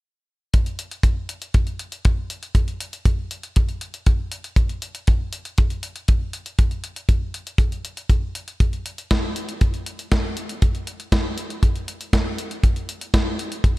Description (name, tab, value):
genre	italo disco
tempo	119 BPM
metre	4/4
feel	straight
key	none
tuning	none
part	clean 12-bit digital drum machine	drums	0.5-13.7 s	hi-hat, snare drum	-28 LUFS	equal	none
part	kick drum	drums	0.5-13.7 s	none	-18 LUFS	equal	none
room	little or no reverb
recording	none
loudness	-20 LUFS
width	side -20 dB against mid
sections	0.5-13.8 A section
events	none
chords	none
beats	| 0.54 1.04 1.54 2.05 | 2.55 3.06 3.56 4.07 | 4.57 5.07 5.58 6.08 | 6.59 7.09 7.59 8.10 | 8.60 9.11 9.61 10.12 | 10.62 11.12 11.63 12.13 | 12.64 13.14 13.65